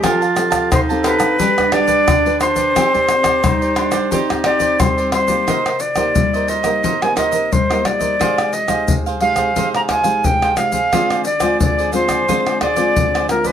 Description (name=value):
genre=samba and choro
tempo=88 BPM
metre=4/4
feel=straight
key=C minor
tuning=A4 = 445 Hz
part: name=warm clarinet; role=second line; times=0.0-5.5 s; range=C4 to F4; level=-22 LUFS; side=right 4 dB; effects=none
part: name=cavaquinho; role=accompaniment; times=0.0-13.5 s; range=D4 to A5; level=-22 LUFS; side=right 6 dB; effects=none
part: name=nylon-string guitar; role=accompaniment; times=0.0-13.5 s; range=C3 to D5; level=-23 LUFS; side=left 3 dB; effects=none
part: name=agogo bells, egg shaker, surdo, pandeiro and tamborim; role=percussion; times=0.0-13.5 s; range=none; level=-20 LUFS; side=left 1 dB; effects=none
part: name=reedy silver concert flute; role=melody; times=0.7-13.5 s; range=Bb4 to Bb5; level=-16 LUFS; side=equal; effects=none
room=moderate studio ambience, RT60 0.5 s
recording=none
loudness=-14 LUFS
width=side -9 dB against mid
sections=0.0-5.5 A section; 5.5-13.5 B section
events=none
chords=0.0 Fadd9; 1.4 G; 2.8 Cmadd9; 5.5 Cm7; 8.2 Fm9/C; 10.9 Dm7b5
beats=| 0.04 0.72 1.40 2.08 | 2.76 3.44 4.12 4.80 | 5.48 6.16 6.84 7.52 | 8.20 8.88 9.56 10.24 | 10.92 11.61 12.29 12.97